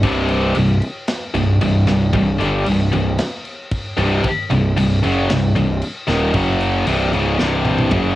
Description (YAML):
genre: heavy metal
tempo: 114 BPM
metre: 4/4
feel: straight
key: C phrygian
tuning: A4 = 438 Hz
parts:
  - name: heavy high-gain guitar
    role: riff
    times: 0.0-8.2 s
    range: C2 to G3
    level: -19 LUFS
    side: left 4 dB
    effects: distortion, cassette tape
  - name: heavy high-gain guitar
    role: riff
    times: 0.0-8.2 s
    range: C2 to G3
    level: -19 LUFS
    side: right 3 dB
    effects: distortion, cassette tape
  - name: fuzz picked electric bass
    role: bass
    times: 0.0-8.2 s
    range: C1 to G1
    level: -20 LUFS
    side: equal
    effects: overdrive
  - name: tight metal drum kit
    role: drums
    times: 0.0-8.0 s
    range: crash cymbal, kick drum, snare drum, toms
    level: -25 LUFS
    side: equal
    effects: cassette tape
room: moderate small room reverb, RT60 0.6 s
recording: home recording on cassette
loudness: -15 LUFS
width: side -15 dB against mid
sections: 0.0-8.2 A section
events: half time 0.0-8.2; drum fill 7.4-8.2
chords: 0.0 Cm; 6.3 F#5; 6.9 C5